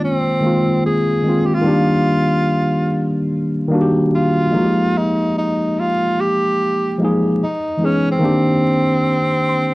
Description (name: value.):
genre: hip hop.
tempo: 73 BPM.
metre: 4/4.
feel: swing 65% on 16ths.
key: unclear.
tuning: A4 = 441 Hz.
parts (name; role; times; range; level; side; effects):
breathy tenor saxophone; melody; 0.0-9.7 s; C4 to Ab4; -19 LUFS; equal; none.
tine electric piano; accompaniment; 0.0-9.7 s; Eb3 to C6; -16 LUFS; equal; plate reverb.
room: moderate studio reverb, RT60 0.6 s.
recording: worn, warbling old tape, cassette tape, vinyl crackle, warbly pitch drift.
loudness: -14 LUFS.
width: side -20 dB against mid.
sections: 0.0-9.7 A section.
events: tine electric piano fill 9.1-9.7.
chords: 0.0 Ab69; 1.7 Ebmaj7; 4.5 Fm11; 7.4 Emaj7; 8.2 Cm9.